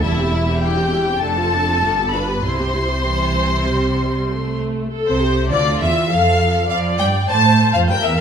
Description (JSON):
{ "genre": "quick classical-period movement for string orchestra", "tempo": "99 BPM", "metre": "4/4", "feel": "uneven beats, rubato", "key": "C major, F major from 4.9 s", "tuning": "A4 = 440 Hz", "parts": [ { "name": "rich studio violin section", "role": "melody", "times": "0.0-8.2 s", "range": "C5 to C6", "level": "-23 LUFS", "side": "left 4 dB", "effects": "none" }, { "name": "rich studio violin section", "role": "second line", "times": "0.0-8.2 s", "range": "E4 to A5", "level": "-20 LUFS", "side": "left 1 dB", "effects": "none" }, { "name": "rich studio viola section", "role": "accompaniment", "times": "0.0-8.2 s", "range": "E3 to D5", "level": "-23 LUFS", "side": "equal", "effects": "none" }, { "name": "rich studio double bass section", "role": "bass", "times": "0.0-8.2 s", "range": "E1 to A2", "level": "-22 LUFS", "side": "right 2 dB", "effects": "none" }, { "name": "rich symphonic cello section", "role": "bass", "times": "0.0-8.2 s", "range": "E2 to A3", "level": "-22 LUFS", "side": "right 2 dB", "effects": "none" } ], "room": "wet recital hall reverb, RT60 1.7 s", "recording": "none", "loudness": "-15 LUFS", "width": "side -7 dB against mid", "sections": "0.0-4.9 A section; 4.9-8.2 B section", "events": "none", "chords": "0.0 C/E; 1.2 Dm7/F; 1.8 G7; 2.4 C; 4.9 F; 7.3 C7", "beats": "| 0.04 0.63 1.22 1.82 | 2.44 3.06 3.69 4.30 | 4.92 5.51 6.10 6.69 | 7.29 7.88" }